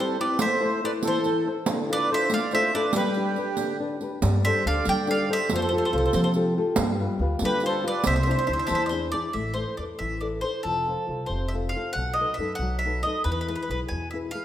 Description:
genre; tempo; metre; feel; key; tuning
italian folk, Italian serenade; 93 BPM (dotted quarters); 6/8; straight; A harmonic minor from 9.4 s; A4 = 440 Hz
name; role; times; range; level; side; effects
bowl-back mandolin; melody; 0.0-14.4 s; A4 to G#5; -27 LUFS; equal; none
accordion; second line; 0.0-8.9 s; G4 to D5; -30 LUFS; right 5 dB; light tremolo tuning
flamenco guitar; accompaniment; 0.0-14.4 s; B2 to C5; -28 LUFS; left 3 dB; none
riq; percussion; 0.4-9.0 s; none; -30 LUFS; right 4 dB; none
upright bass; bass; 4.2-14.3 s; F1 to G3; -28 LUFS; equal; none
room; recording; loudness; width
wet recital hall reverb, RT60 1.5 s; none; -23 LUFS; side -11 dB against mid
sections
0.0-9.4 A section; 9.4-14.4 B section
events
none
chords
0.4 Am; 1.7 Dm; 2.9 G; 4.2 Gsus2; 5.5 Fadd9; 6.8 G7; 8.1 Cadd9; 8.7 E7; 9.4 Amadd9; 10.7 F; 12.0 B7; 13.3 E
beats
| 0.40 1.04 | 1.67 2.31 | 2.94 3.58 | 4.22 4.87 | 5.50 6.14 | 6.77 7.41 | 8.05 8.70 | 9.35 10.00 | 10.66 11.31 | 11.96 12.61 | 13.26 13.92

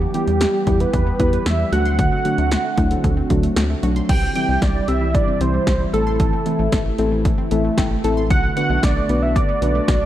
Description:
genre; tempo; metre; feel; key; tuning
synth-pop; 114 BPM; 4/4; straight; unclear; A4 = 439 Hz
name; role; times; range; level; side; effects
wide unison lead; melody; 0.0-10.1 s; G4 to G5; -23 LUFS; right 2 dB; slapback echo
phased analog pad; sustained chords; 0.0-10.1 s; C3 to G4; -27 LUFS; left 1 dB; phaser, chorus
analog pluck; arpeggios; 0.0-10.1 s; D3 to C6; -27 LUFS; right 6 dB; chorus, slapback echo
rubbery square bass; bass; 0.0-10.1 s; A1 to E2; -22 LUFS; equal; none
muted felt-like synth keys; accompaniment; 0.1-9.8 s; F#3 to A5; -24 LUFS; left 3 dB; chorus
punchy analog drum machine; drums; 0.1-10.0 s; crash cymbal, hi-hat, kick drum, snare drum; -21 LUFS; equal; none
room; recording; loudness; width
moderate lush hall reverb, RT60 2.5 s; dark, warm production; -16 LUFS; side -12 dB against mid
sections
0.0-4.1 A section; 4.1-10.1 B section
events
synth keys fill 7.2-8.3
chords
0.0 Em; 1.7 D7; 4.1 C; 5.9 Am; 8.3 Bm7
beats
0.41 0.94 1.46 | 1.99 2.51 3.04 3.57 | 4.09 4.62 5.14 5.67 | 6.20 6.72 7.25 7.78 | 8.30 8.83 9.36 9.88

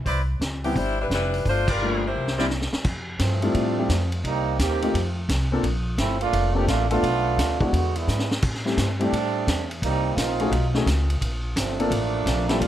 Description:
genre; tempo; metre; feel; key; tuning
jazz, big band swing; 172 BPM; 4/4; swing 64% on 8ths; F major; A4 = 441 Hz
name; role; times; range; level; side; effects
upright bass; bass; 0.0-12.7 s; F1 to A2; -25 LUFS; equal; none
warm trumpet section; stabs; 0.1-2.5 s; E4 to D5; -29 LUFS; equal; none
vintage drum kit; drums; 0.1-12.7 s; crash cymbal, hi-hat, kick drum, ride cymbal, snare drum; -28 LUFS; equal; none
warm saxophone section; melody; 0.6-2.5 s; E3 to C5; -26 LUFS; left 2 dB; none
warm grand piano; accompaniment; 0.6-12.6 s; G3 to A4; -26 LUFS; left 3 dB; none
clear trombone section; second line; 3.2-12.7 s; D3 to G4; -26 LUFS; right 4 dB; none
room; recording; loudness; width
little or no reverb; close, detailed microphones; -21 LUFS; side -12 dB against mid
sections
0.0-2.9 A section; 2.9-12.7 B section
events
band accent 1.6; drum fill 2.2-2.9, 8.1-8.4; trombone section solo 2.9-12.7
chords
0.1 Cmaj9; 1.5 Gm7; 2.2 C9; 2.9 Fmaj7; 4.2 Cm7; 4.9 F7; 5.6 Bbmaj7; 7.0 Bm7b5; 7.7 E7; 8.4 Am7; 9.8 Cm7; 10.5 B13; 11.2 Bbmaj7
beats
| 0.06 0.41 0.76 1.11 | 1.46 1.80 2.15 2.50 | 2.85 3.20 3.55 3.90 | 4.25 4.60 4.94 5.29 | 5.64 5.99 6.34 6.68 | 7.03 7.38 7.73 8.08 | 8.43 8.78 9.12 9.47 | 9.82 10.17 10.52 10.87 | 11.21 11.56 11.91 12.26 | 12.61

